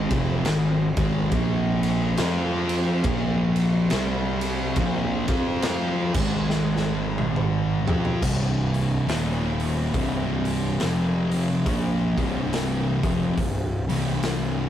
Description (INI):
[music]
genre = stoner and doom metal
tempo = 70 BPM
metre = 4/4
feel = swing 60% on 8ths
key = C minor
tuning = A4 = 439 Hz
[part]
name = thick fuzz guitar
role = riff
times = 0.0-14.7 s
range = C2 to F4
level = -26 LUFS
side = left 3 dB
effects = distortion
[part]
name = thick fuzz guitar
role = riff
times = 0.0-14.7 s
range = C2 to F4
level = -27 LUFS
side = right 4 dB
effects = distortion
[part]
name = fuzz fingered electric bass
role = bass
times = 0.0-14.7 s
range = C1 to F2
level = -28 LUFS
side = equal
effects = overdrive
[part]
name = raw garage drum kit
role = drums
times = 0.1-14.5 s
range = crash cymbal, hi-hat, kick drum, ride cymbal, snare drum, toms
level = -28 LUFS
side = equal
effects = none
[sound]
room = light reverb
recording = rough rehearsal-room recording, warm saturation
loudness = -21 LUFS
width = side -10 dB against mid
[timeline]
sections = 0.0-8.2 A section; 8.2-14.7 B section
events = drum fill 6.5-8.2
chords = 0.0 Ab5; 1.3 Bb5; 2.2 F5; 3.1 Bb5; 3.9 C5; 4.8 Bb5; 5.2 F5; 6.1 Ab5; 7.8 F5; 8.2 C5; 9.1 Eb5; 9.9 C5; 10.8 F5; 11.7 C5